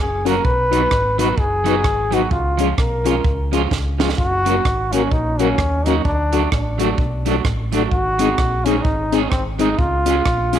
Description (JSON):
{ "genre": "ska", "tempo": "128 BPM", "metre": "4/4", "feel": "swing 60% on 8ths", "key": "F# major", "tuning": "A4 = 441 Hz", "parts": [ { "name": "clear trombone", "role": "melody", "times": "0.0-10.6 s", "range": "B#3 to B4", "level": "-20 LUFS", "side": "equal", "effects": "none" }, { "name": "electric guitar at the edge of break-up", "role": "accompaniment", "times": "0.0-10.6 s", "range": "E#3 to G#4", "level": "-24 LUFS", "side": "right 10 dB", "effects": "tremolo, slapback echo" }, { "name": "fingered electric bass", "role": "bass", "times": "0.0-10.6 s", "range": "F#1 to D#2", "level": "-22 LUFS", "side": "equal", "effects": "none" }, { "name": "mellow tonewheel organ", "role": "stabs", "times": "0.3-10.6 s", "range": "B#3 to B4", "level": "-23 LUFS", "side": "left 10 dB", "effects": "chorus vibrato" }, { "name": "compact cocktail drum kit", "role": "drums", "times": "0.3-10.6 s", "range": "hi-hat, kick drum, rim click, snare drum", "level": "-22 LUFS", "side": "right 1 dB", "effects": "none" } ], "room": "moderate plate reverb, RT60 1.6 s, small room ambience", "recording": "1960s-style stereo with parts hard left and right", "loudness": "-16 LUFS", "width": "side -10 dB against mid", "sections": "0.0-10.6 A section", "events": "drum fill 3.7-4.2", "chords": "0.4 B; 2.3 C#; 4.2 F#; 6.1 D; 7.9 G#; 9.8 C#" }